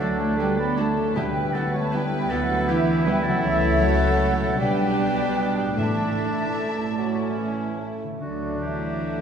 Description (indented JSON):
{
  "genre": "classical, slow romantic movement for symphony orchestra",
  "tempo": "48-54 BPM (dotted quarters)",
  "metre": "6/8",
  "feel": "rubato",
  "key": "unclear",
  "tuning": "A4 = 440 Hz",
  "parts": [
    { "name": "warm chamber violin section", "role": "melody", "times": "0.0-9.2 s", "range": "E4 to A4", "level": "-36 LUFS", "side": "left 5 dB", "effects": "none" },
    { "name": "mellow flute section", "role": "second line", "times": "0.0-9.2 s", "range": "D5 to B5", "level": "-29 LUFS", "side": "right 1 dB", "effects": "none" },
    { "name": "warm chamber violin section", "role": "second line", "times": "0.0-7.6 s", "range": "A4 to E5", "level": "-32 LUFS", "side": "left 1 dB", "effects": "none" },
    { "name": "warm oboe", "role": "second line", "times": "0.0-9.2 s", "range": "F#4 to D5", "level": "-32 LUFS", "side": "right 1 dB", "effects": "none" },
    { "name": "warm chamber viola section", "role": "accompaniment", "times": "0.0-9.2 s", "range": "A3 to E4", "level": "-32 LUFS", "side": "right 2 dB", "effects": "none" },
    { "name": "clear trombone section", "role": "sustained chords", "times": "0.0-9.2 s", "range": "B2 to B3", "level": "-32 LUFS", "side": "right 4 dB", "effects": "none" },
    { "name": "dark French horn section", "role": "sustained chords", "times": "0.0-9.2 s", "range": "D3 to B3", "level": "-29 LUFS", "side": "left 2 dB", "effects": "none" },
    { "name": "concert harp", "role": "arpeggios", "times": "0.0-9.2 s", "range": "A2 to D5", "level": "-34 LUFS", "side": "left 6 dB", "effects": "none" },
    { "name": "clear trumpet", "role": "stabs", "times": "0.0-9.2 s", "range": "C#4 to E4", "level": "-32 LUFS", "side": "right 1 dB", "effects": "none" },
    { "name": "warm chamber cello section", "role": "bass", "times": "0.0-9.2 s", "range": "D3 to B3", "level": "-29 LUFS", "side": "right 3 dB", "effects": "none" },
    { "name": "warm chamber double bass section", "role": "bass", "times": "0.0-9.2 s", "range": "A1 to D2", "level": "-30 LUFS", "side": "right 1 dB", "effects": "none" },
    { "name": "timpani", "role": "percussion", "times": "1.2-2.3, 5.8-6.9 s", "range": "A2 to D3", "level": "-34 LUFS", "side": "equal", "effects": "none" },
    { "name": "warm bassoon", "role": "accompaniment", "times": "7.0-8.2 s", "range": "E3 to A3", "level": "-36 LUFS", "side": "equal", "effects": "none" }
  ],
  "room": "wet concert hall reverb, RT60 2.0 s",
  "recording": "minimal, uncompressed stereo recording",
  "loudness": "-21 LUFS",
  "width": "side -7 dB against mid",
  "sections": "0.0-9.2 A section",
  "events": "none",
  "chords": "0.0 Em7/D; 3.4 A/C#; 4.6 G/B; 5.8 Asus4; 7.0 A; 8.2 D",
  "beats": "| 1.16 2.30 | 3.43 4.59 | 5.77 6.97 | 8.22"
}